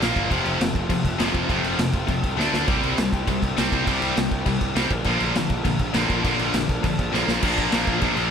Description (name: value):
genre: punk rock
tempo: 202 BPM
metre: 4/4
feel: straight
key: unclear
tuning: A4 = 439 Hz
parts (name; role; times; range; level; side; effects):
- distorted electric guitar; riff; 0.0-8.3 s; F2 to D4; -26 LUFS; right 13 dB; distortion
- sludgy distorted guitar; riff; 0.0-8.3 s; F2 to Bb4; -29 LUFS; left 1 dB; overdrive
- tight distorted guitar; riff; 0.0-8.3 s; F2 to D4; -26 LUFS; left 11 dB; distortion
- fuzz picked electric bass; bass; 0.0-8.3 s; F1 to D2; -28 LUFS; equal; overdrive
- raw garage drum kit; drums; 0.0-8.2 s; crash cymbal, kick drum, snare drum; -24 LUFS; equal; none
room: little or no reverb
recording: none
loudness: -20 LUFS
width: side -7 dB against mid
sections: 0.0-7.4 A section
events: drum fill 2.4, 7.1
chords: 0.0 Bb5; 0.3 F; 2.4 D5; 2.7 C; 4.9 Bb